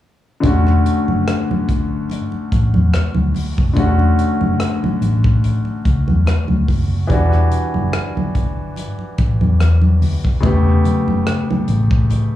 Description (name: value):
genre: lush 1970s-style soul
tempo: 72 BPM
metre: 4/4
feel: swing 54% on 16ths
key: unclear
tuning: A4 = 440 Hz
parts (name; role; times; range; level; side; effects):
- clear concert grand piano; accompaniment; 0.4-12.4 s; C#3 to G4; -20 LUFS; left 2 dB; slapback echo
- vintage muted fingered electric bass; bass; 0.4-12.2 s; E1 to E2; -16 LUFS; left 1 dB; none
- tight funk drum kit; drums; 0.4-12.3 s; hi-hat, kick drum, rim click; -20 LUFS; equal; none
- congas; percussion; 0.4-12.3 s; none; -24 LUFS; right 4 dB; none
room: little or no reverb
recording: live gig heard through the venue's PA, club reverb, studio reverb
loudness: -14 LUFS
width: side -13 dB against mid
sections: 0.4-12.4 A section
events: none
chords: 0.4 Dmaj7/E; 7.1 Em9; 10.4 A9/E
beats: | 0.43 1.26 2.10 2.93 | 3.77 4.60 5.43 6.27 | 7.10 7.93 8.77 9.60 | 10.43 11.27 12.10